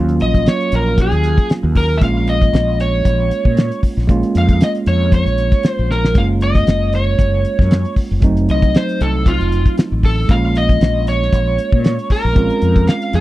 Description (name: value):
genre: straight-eighth soul blues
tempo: 116 BPM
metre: 4/4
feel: swing 54% on 16ths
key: Bb minor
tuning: A4 = 439 Hz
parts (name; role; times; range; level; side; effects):
- bell-like tine electric piano; accompaniment; 0.0-13.2 s; Gb3 to F4; -20 LUFS; right 3 dB; none
- mellow fretless electric bass; bass; 0.0-13.2 s; F1 to Bb2; -16 LUFS; equal; ensemble chorus
- cloth-damped thuddy drum kit; drums; 0.1-13.2 s; hi-hat, kick drum, snare drum; -14 LUFS; equal; none
- overdriven slide guitar; melody; 0.2-13.2 s; F4 to F5; -20 LUFS; right 1 dB; none
room: little or no reverb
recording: dry, close 1970s-style studio recording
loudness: -12 LUFS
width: side -16 dB against mid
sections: 0.0-13.2 A section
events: drum fill 5.9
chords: 0.0 Ebm9; 2.0 Bbm7; 6.2 Gbmaj7; 8.2 F7b9; 10.3 Bbm9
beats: 0.46 0.98 1.50 | 2.02 2.53 3.05 3.57 | 4.09 4.60 5.12 5.64 | 6.16 6.67 7.19 7.71 | 8.22 8.74 9.26 9.78 | 10.29 10.81 11.32 11.84 | 12.36 12.87